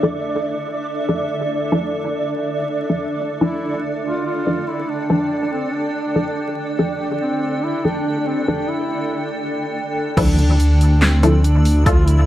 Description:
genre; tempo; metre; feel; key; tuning
deep dubstep; 142 BPM; 4/4; swing 56% on 16ths, half-time; D minor; A4 = 442 Hz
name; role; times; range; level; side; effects
granular cloud pad; sustained chords; 0.0-12.3 s; D4 to E6; -24 LUFS; equal; built-in reverb, vintage 12-bit sampler grit
filtered dub chord stab; stabs; 0.0-12.3 s; F3 to A4; -20 LUFS; left 1 dB; wide subtle chorus, dub echo
flickering grainy texture; texture; 0.0-9.3 s; D5; -26 LUFS; right 3 dB; built-in reverb
mellow duduk; melody; 3.4-12.3 s; C4 to F4; -24 LUFS; equal; dub echo
deep soft wobble bass; bass; 10.2-12.3 s; D2; -13 LUFS; equal; chorus
deep house drum kit; drums; 10.2-12.2 s; crash cymbal, handclaps, hi-hat, snare drum; -24 LUFS; equal; none
electronic kick drum; drums; 10.2-12.0 s; none; -16 LUFS; equal; none
room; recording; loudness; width
moderate digital room reverb, RT60 1.1 s; vinyl crackle; -17 LUFS; side -13 dB against mid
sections
0.0-10.2 A section; 10.2-12.3 B section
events
break 9.3-10.2; drop 10.2-12.3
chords
0.0 Dmadd9

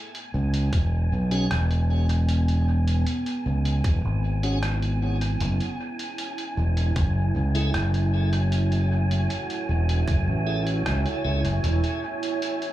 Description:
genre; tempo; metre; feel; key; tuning
ambient dub; 77 BPM; 4/4; straight; F# minor; A4 = 439 Hz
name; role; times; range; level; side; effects
deep dark ambient pad; sustained chords; 1.7-12.7 s; A3 to E5; -32 LUFS; right 3 dB; chorus, built-in reverb
wind-like tuned noise texture; texture; 0.0-12.7 s; G#5; -36 LUFS; equal; built-in reverb
lo-fi sampler-style drum kit; drums; 0.1-12.7 s; hi-hat, rim click; -35 LUFS; equal; dub echo
overdriven fingered electric bass; bass; 0.3-11.8 s; E1 to C#2; -22 LUFS; equal; none
electronic kick drum; drums; 0.7-10.2 s; none; -24 LUFS; equal; none
tonewheel organ; stabs; 1.3-11.4 s; A3 to G#4; -34 LUFS; equal; slow rotary speaker, vintage 12-bit sampler grit, dub echo
room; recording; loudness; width
little or no reverb; small room ambience; -22 LUFS; side -14 dB against mid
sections
0.0-12.7 A section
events
none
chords
0.0 E6; 5.4 F#m7; 11.6 E6

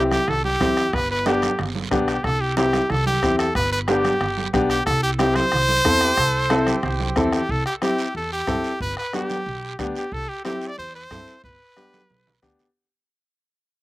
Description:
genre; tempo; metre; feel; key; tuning
latin, cumbia; 183 BPM; 4/4; straight; C major; A4 = 439 Hz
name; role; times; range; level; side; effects
brilliant trumpet; melody; 0.0-12.4 s; G4 to D5; -23 LUFS; equal; none
bright upright piano; accompaniment; 0.0-12.7 s; B3 to A4; -22 LUFS; left 2 dB; none
upright bass; bass; 0.0-12.6 s; G1 to G2; -27 LUFS; equal; none
bombo; percussion; 0.1-12.6 s; none; -30 LUFS; left 1 dB; none
congas; percussion; 0.1-12.7 s; none; -29 LUFS; right 5 dB; slapback echo
guiro; percussion; 0.1-12.8 s; none; -36 LUFS; right 6 dB; none
accordion; second line; 5.8-7.3 s; E4 to A4; -29 LUFS; right 2 dB; slapback echo
room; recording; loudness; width
light reverb; recorded outdoors, with no room sound; -19 LUFS; side -18 dB against mid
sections
0.0-7.5 A section; 7.5-12.8 B section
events
fade-out 7.5-12.8; drum fill 11.9-12.8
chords
0.0 C; 0.9 G; 2.2 C; 3.6 G; 4.9 C; 8.8 G; 10.1 C; 11.4 G

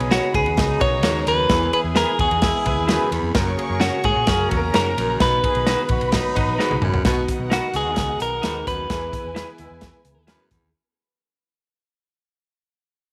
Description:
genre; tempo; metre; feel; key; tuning
uptempo 1960s-style soul; 130 BPM; 4/4; straight; B major; A4 = 441 Hz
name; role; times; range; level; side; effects
warm horn section; second line; 0.0-9.9 s; F#3 to G#4; -33 LUFS; equal; none
warm studio violin section; second line; 0.0-10.7 s; B3 to C#6; -34 LUFS; equal; none
bright upright piano; accompaniment; 0.0-10.0 s; B2 to C#5; -32 LUFS; equal; none
mellow tonewheel organ; sustained chords; 0.0-10.7 s; C#3 to G#4; -36 LUFS; equal; none
vintage muted fingered electric bass; bass; 0.0-10.7 s; G#1 to A#2; -29 LUFS; equal; transformer saturation
natural country drum kit; drums; 0.0-10.6 s; hi-hat, kick drum, ride cymbal, snare drum, toms; -26 LUFS; equal; none
direct-recorded clean electric guitar; melody; 0.1-10.2 s; F#4 to C#5; -24 LUFS; equal; tape echo
electric guitar through a small old amp; stabs; 0.1-10.4 s; C#4 to C#5; -32 LUFS; equal; none
raspy baritone saxophone; riff; 1.0-10.7 s; E2 to B2; -32 LUFS; equal; none
room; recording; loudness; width
light reverb, studio reverb; none; -20 LUFS; mono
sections
0.0-7.0 A section; 7.0-10.7 B section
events
drum fill 6.6-7.0; fade-out 7.0-10.7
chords
0.0 Badd9; 1.5 E; 3.4 F#; 5.2 B; 8.9 E

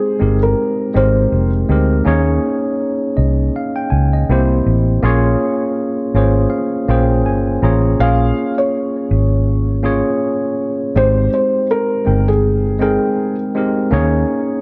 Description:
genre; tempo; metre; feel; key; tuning
lo-fi hip hop; 81 BPM; 4/4; swing 55% on 16ths; Bb dorian; A4 = 440 Hz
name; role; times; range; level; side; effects
felt-muted upright piano; melody; 0.0-1.5, 8.0-13.4 s; Ab4 to F5; -21 LUFS; equal; low-pass filter, analog delay
tine electric piano; accompaniment; 0.0-14.6 s; Ab3 to Bb5; -19 LUFS; equal; overdrive, cassette tape, low-pass filter
vintage muted fingered electric bass; bass; 0.2-14.2 s; F1 to Eb2; -17 LUFS; equal; none
room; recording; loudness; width
light reverb, small room reverb; none; -16 LUFS; mono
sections
0.0-8.0 A section; 8.0-14.6 B section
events
none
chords
0.0 Abmaj7; 2.1 Eb7sus4; 4.3 C7; 5.0 Bbm7; 10.9 Abmaj7; 13.9 Eb7sus4

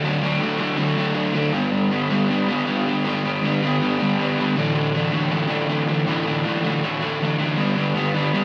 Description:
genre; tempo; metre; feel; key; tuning
rock; 159 BPM; 4/4; straight; G major; A4 = 444 Hz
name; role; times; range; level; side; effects
crunchy overdriven guitar; solo; 0.0-8.4 s; G2 to D4; -21 LUFS; equal; none
room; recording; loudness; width
wet stone room reverb, RT60 1.1 s; band playing live in one room; -21 LUFS; mono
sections
0.0-1.5 A section; 1.5-8.4 B section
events
none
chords
0.0 D; 1.5 G; 4.6 Asus4; 7.6 G

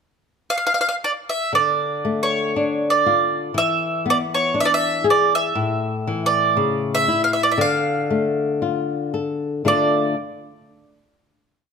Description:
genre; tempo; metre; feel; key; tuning
fado-style ballad; 59 BPM; 2/4; rubato; D harmonic minor; A4 = 440 Hz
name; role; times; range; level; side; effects
bowl-back mandolin; melody; 0.5-10.2 s; C#5 to F5; -19 LUFS; right 3 dB; none
flamenco guitar; accompaniment; 1.5-10.1 s; A2 to A4; -21 LUFS; left 4 dB; none
room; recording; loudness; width
moderate recital hall reverb, RT60 1.5 s; close, detailed microphones; -18 LUFS; side -6 dB against mid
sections
0.0-1.5 pickup bar; 1.5-9.7 A section; 9.7-11.7 final chord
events
none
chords
0.0 N.C.; 1.5 Dm; 3.5 E7; 5.6 A; 7.6 Dm

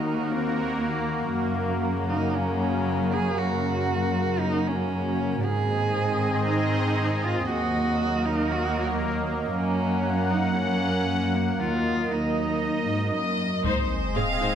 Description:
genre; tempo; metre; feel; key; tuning
cinematic, hybrid orchestral and electronic film score; 117 BPM; 4/4; straight; Eb dorian; A4 = 440 Hz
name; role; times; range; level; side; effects
dark cello; melody; 0.0-13.1 s; Bb3 to Ab4; -29 LUFS; right 2 dB; ping-pong delay
sweeping resonant pad; sustained chords; 0.0-14.6 s; Db3 to Gb5; -27 LUFS; left 1 dB; chorus
warm symphonic cello section; bass; 0.0-14.5 s; Eb2 to Ab2; -28 LUFS; right 1 dB; none
rich chamber violin section; melody; 13.1-14.6 s; C5 to F5; -28 LUFS; left 2 dB; none
rich studio viola section; accompaniment; 13.6-14.5 s; C4 to C5; -29 LUFS; left 2 dB; none
taiko ensemble; drums; 13.6-14.6 s; none; -34 LUFS; left 2 dB; none
sub drop; sound effects; 13.6-14.6 s; none; -31 LUFS; left 1 dB; none
resonant blip pluck; arpeggios; 13.7-14.6 s; Ab3 to Ab4; -37 LUFS; right 6 dB; none
room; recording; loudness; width
moderate recital hall reverb, RT60 1.5 s; none; -23 LUFS; side -8 dB against mid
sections
0.0-13.6 A section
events
impact 13.6-14.6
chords
0.0 Ebm; 1.3 Gb; 5.4 Ab; 7.5 Ebm; 9.5 Gb; 11.6 Ebm; 13.6 Ab

